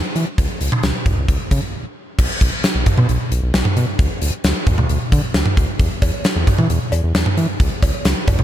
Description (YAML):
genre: synth-pop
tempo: 133 BPM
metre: 4/4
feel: straight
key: unclear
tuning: A4 = 440 Hz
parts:
  - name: round analog bass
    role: bass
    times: 0.0-8.4 s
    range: B1 to E3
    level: -18 LUFS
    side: equal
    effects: none
  - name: gated 80s drum kit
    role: drums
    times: 0.2-8.4 s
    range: cowbell, crash cymbal, hi-hat, kick drum, snare drum, toms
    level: -17 LUFS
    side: equal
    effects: none
room: little or no reverb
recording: none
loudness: -15 LUFS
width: side -12 dB against mid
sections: 0.0-2.2 A section; 2.2-8.4 B section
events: break 1.7-2.2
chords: none